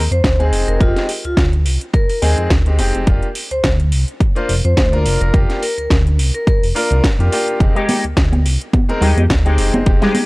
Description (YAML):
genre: nu-disco, nu disco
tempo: 106 BPM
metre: 4/4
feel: swing 55% on 16ths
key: F dorian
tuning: A4 = 440 Hz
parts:
  - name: chorused synth bass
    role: bass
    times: 0.0-10.0 s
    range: F1 to F2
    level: -16 LUFS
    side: equal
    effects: none
  - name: vibraphone with medium hard mallets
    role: melody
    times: 0.1-6.6 s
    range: F4 to C5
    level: -23 LUFS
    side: equal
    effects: analog delay
  - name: house drum kit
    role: drums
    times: 0.1-10.3 s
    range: hi-hat, snare drum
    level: -23 LUFS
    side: equal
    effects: none
  - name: electronic kick drum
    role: drums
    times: 0.2-10.0 s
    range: none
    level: -15 LUFS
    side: equal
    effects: none
  - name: bright concert grand piano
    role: accompaniment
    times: 0.4-10.1 s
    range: Ab3 to C5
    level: -21 LUFS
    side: left 1 dB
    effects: sidechain pumping, analog delay
  - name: electric guitar with an envelope filter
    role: riff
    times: 7.8-10.3 s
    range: Ab3 to G4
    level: -20 LUFS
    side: left 2 dB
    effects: analog chorus
  - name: congas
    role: percussion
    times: 7.9-10.3 s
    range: none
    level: -19 LUFS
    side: right 1 dB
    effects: none
room: digital ambience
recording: dry, gritty hardware recording, transformer saturation, cassette tape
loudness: -13 LUFS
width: side -23 dB against mid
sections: 0.0-10.3 A section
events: none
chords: 0.0 Fm9; 3.1 Gm7/F; 7.6 Fm9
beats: 0.24 | 0.81 1.38 1.94 2.51 | 3.07 3.64 4.21 4.77 | 5.34 5.90 6.47 7.04 | 7.60 8.17 8.73 9.30 | 9.87